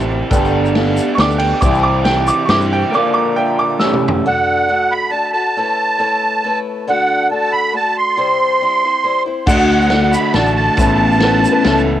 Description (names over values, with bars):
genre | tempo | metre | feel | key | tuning
folk rock and heartland rock | 138 BPM | 3/4 | straight | C major, D major from 4.2 s | A4 = 439 Hz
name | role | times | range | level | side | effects
clear concert grand piano | accompaniment | 0.0-4.2, 9.5-12.0 s | F4 to A5 | -24 LUFS | right 2 dB | cassette tape
picked old ladder-braced acoustic guitar | accompaniment | 0.0-12.0 s | G2 to C5 | -22 LUFS | left 5 dB | cassette tape
electric guitar through a small old amp | riff | 0.0-4.2, 9.5-12.0 s | A2 to A4 | -17 LUFS | equal | phaser, cassette tape
picked electric bass | bass | 0.0-2.8, 9.5-12.0 s | G1 to G2 | -18 LUFS | left 1 dB | transformer saturation
tube shaker | percussion | 0.0-2.7, 9.5-11.8 s | none | -34 LUFS | left 4 dB | none
vintage drum kit | drums | 0.3-4.2, 9.5-11.7 s | crash cymbal, kick drum, ride cymbal, snare drum, toms | -19 LUFS | equal | cassette tape
bright upright piano | second line | 1.1-4.2, 11.2-12.0 s | F#4 to E6 | -17 LUFS | right 3 dB | cassette tape, analog delay
musette accordion | melody | 4.3-11.8 s | F#5 to C6 | -15 LUFS | right 2 dB | analog delay
room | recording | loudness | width
light reverb | home recording on cassette | -12 LUFS | side -11 dB against mid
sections
0.0-4.2 A section; 4.2-12.0 B section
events
upright piano solo 0.0-4.2; drum fill 3.8-4.2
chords
0.3 Gadd9; 1.6 C; 2.9 Bb; 3.8 A7; 4.2 D; 5.5 Aadd9; 6.9 D; 8.2 C; 9.5 D; 10.8 Aadd9